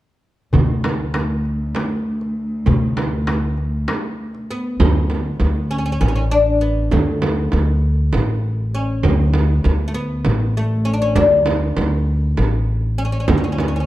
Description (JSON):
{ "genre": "Turkish makam ensemble", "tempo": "198 BPM (eighths)", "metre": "7/8", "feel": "straight", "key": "unclear", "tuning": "A4 = 439 Hz", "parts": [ { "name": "upright bass", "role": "bass", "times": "0.5-13.8 s", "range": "A1 to D2", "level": "-18 LUFS", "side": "equal", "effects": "none" }, { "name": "muted cello", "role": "drone", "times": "0.5-4.9 s", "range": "D2", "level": "-26 LUFS", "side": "equal", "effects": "none" }, { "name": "darbuka", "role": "percussion", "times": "0.5-4.4 s", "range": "none", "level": "-22 LUFS", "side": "left 2 dB", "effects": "none" }, { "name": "frame drum", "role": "percussion", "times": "0.5-13.7 s", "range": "none", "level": "-21 LUFS", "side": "right 3 dB", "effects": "none" }, { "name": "oud", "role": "melody", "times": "4.5-13.9 s", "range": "A3 to D4", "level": "-21 LUFS", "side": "left 2 dB", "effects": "none" } ], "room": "moderate recital hall reverb, RT60 1.4 s", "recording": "dark, warm production", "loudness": "-16 LUFS", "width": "side -15 dB against mid", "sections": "0.5-4.8 A section; 4.8-13.9 B section", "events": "none", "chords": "none", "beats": "| 0.54 0.84 1.15 1.45 1.75 2.06 2.36 | 2.67 2.97 3.27 3.58 3.88 4.19 4.49 | 4.79 5.10 5.40 5.70 6.01 6.31 6.61 | 6.92 7.22 7.53 7.83 8.13 8.43 8.74 | 9.04 9.34 9.65 9.95 10.25 10.56 10.86 | 11.16 11.46 11.77 12.07 12.37 12.68 12.98 | 13.28 13.58" }